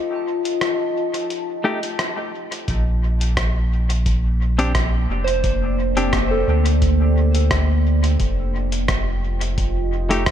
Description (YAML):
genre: ambient dub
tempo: 87 BPM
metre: 4/4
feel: swing 53% on 16ths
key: F mixolydian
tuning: A4 = 440 Hz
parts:
  - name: deep dark ambient pad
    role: sustained chords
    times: 0.0-10.3 s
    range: Bb3 to A5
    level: -25 LUFS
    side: left 1 dB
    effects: chorus, built-in reverb
  - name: soft synth bell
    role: arpeggios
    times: 0.0-8.2 s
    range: A4 to A5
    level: -28 LUFS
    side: right 3 dB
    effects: chorus, phaser, low-pass filter, ping-pong delay
  - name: lo-fi sampler-style drum kit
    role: drums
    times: 0.5-10.3 s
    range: hi-hat, rim click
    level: -27 LUFS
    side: equal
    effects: dub echo
  - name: semi-hollow electric guitar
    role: stabs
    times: 1.6-10.2 s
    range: A3 to G4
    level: -26 LUFS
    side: left 2 dB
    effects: dub echo
  - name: warm sub bass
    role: bass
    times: 2.7-10.3 s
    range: F1 to D2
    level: -19 LUFS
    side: equal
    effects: none
  - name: electronic kick drum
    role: drums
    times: 2.7-10.3 s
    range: none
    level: -25 LUFS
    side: equal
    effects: overdrive
room: moderate church reverb, RT60 3.3 s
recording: dreamy mix soaked in reverb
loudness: -18 LUFS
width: side -10 dB against mid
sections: 0.0-10.3 A section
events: break 0.0-2.7; filter sweep on synth bell 0.0-10.3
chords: 0.0 F9; 2.7 Bb69; 8.2 F9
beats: 0.61 1.30 1.99 | 2.68 3.37 4.06 4.75 | 5.44 6.13 6.82 7.51 | 8.20 8.89 9.58 10.27